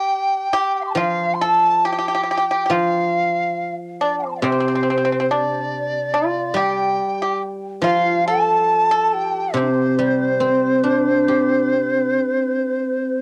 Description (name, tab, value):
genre	chinese traditional, Chinese chamber ensemble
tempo	70 BPM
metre	4/4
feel	rubato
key	C zhi mode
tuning	A4 = 438 Hz
part	large dizi	melody	0.0-13.2 s	C5 to D6	-22 LUFS	equal	cassette tape, analog delay
part	pipa	second line	0.0-13.2 s	C4 to A4	-25 LUFS	equal	cassette tape
part	guzheng	accompaniment	0.9-13.0 s	C3 to G4	-26 LUFS	equal	cassette tape
part	breathy mellow low xiao	second line	7.8-13.2 s	C4 to A4	-26 LUFS	equal	cassette tape
room	moderate booth ambience, RT60 0.2 s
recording	home recording on cassette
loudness	-19 LUFS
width	mono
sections	1.0-13.2 A section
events	none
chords	none